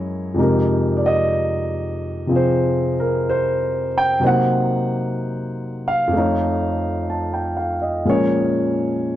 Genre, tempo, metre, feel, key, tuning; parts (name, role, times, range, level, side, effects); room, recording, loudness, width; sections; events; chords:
jazz ballad; 63 BPM; 4/4; swing 68% on 8ths; F minor; A4 = 440 Hz
warm concert grand piano; solo; 0.0-9.2 s; F2 to A5; -18 LUFS; equal
studio reverb; dry, close 1970s-style studio recording; -18 LUFS; side -13 dB against mid
0.0-8.0 A section; 8.0-9.2 B section
0.4 Fm11; 4.2 Cm7b5; 6.1 F7b13; 8.0 Bbm7